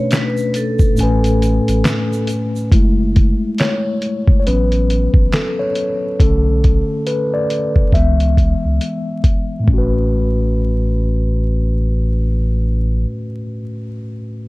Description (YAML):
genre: lo-fi hip hop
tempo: 69 BPM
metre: 4/4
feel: swing 60% on 16ths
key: A major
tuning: A4 = 441 Hz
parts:
  - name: vibraphone with medium hard mallets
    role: melody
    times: 0.0-2.3 s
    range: A4 to B4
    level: -23 LUFS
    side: right 1 dB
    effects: analog delay
  - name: mellow tine electric piano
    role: accompaniment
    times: 0.0-14.5 s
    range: A2 to G#5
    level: -18 LUFS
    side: left 1 dB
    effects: medium stereo tremolo
  - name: lo-fi sampler-style drum kit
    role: drums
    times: 0.1-9.9 s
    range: handclaps, hi-hat, kick drum, snare drum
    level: -15 LUFS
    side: equal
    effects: none
  - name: egg shaker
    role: percussion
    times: 0.1-2.7 s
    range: none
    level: -39 LUFS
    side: right 6 dB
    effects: none
  - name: warm sub bass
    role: bass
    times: 1.0-13.1 s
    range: F#1 to C#2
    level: -17 LUFS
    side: equal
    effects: none
room: digital ambience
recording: vinyl crackle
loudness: -14 LUFS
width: side -20 dB against mid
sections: 0.0-2.7 A section; 2.7-9.7 B section; 9.7-13.2 C section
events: kick muted 1.0-2.7; tine electric piano solo 2.7-9.7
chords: 0.0 Bm7; 1.0 Amaj9; 2.7 F#m9; 4.5 A6; 6.2 Bm7; 7.9 C#m7; 9.7 A6